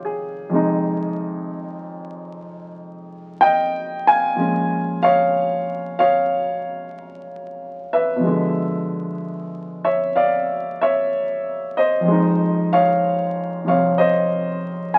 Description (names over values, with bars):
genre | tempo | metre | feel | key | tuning
solo jazz | 62 BPM | 4/4 | swing 68% on 8ths | F minor | A4 = 440 Hz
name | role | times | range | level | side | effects
warm grand piano | solo | 0.0-15.0 s | F2 to Ab5 | -21 LUFS | equal | none
room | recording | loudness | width
moderate studio ambience, RT60 0.5 s | very old 78 rpm record, vinyl crackle | -20 LUFS | mono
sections
0.0-15.0 A section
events
none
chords
0.0 Fm7; 4.4 Bbm7; 8.2 Bdim7; 12.0 Fm7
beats
| 0.52 1.48 2.44 3.41 | 4.37 5.33 6.29 7.25 | 8.21 9.17 10.13 11.09 | 12.05 13.01 13.96 14.92